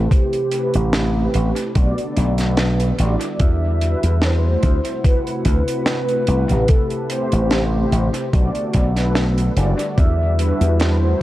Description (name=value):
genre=vaporwave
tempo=73 BPM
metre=4/4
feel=swing 54% on 16ths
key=E minor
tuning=A4 = 441 Hz
part: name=warm velvety synth lead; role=melody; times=0.0-11.2 s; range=G4 to E5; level=-26 LUFS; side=equal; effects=chorus, tape echo
part: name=mellow synth brass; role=accompaniment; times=0.0-11.2 s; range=G3 to D5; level=-24 LUFS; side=equal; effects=ensemble chorus, dub echo
part: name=warbly tape-like pad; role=sustained chords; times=0.0-11.2 s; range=C3 to F#5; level=-30 LUFS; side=left 2 dB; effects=chorus, built-in reverb, vintage 12-bit sampler grit
part: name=slap bass with an envelope filter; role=bass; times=0.0-11.1 s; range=F#1 to E2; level=-18 LUFS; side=equal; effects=tube saturation
part: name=electronic kick drum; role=drums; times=0.1-10.2 s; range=none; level=-16 LUFS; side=equal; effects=overdrive
part: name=tight funk drum kit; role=drums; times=0.1-11.0 s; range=hi-hat, snare drum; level=-26 LUFS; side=right 1 dB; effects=dub echo
room=small room ambience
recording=echo-heavy mix, cassette tape, faint mains hum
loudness=-16 LUFS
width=side -16 dB against mid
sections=0.0-11.2 A section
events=none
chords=0.1 Am9; 1.8 Bm7; 3.4 Em7; 4.6 D13; 6.7 Am9; 8.3 Bm7; 10.0 Em7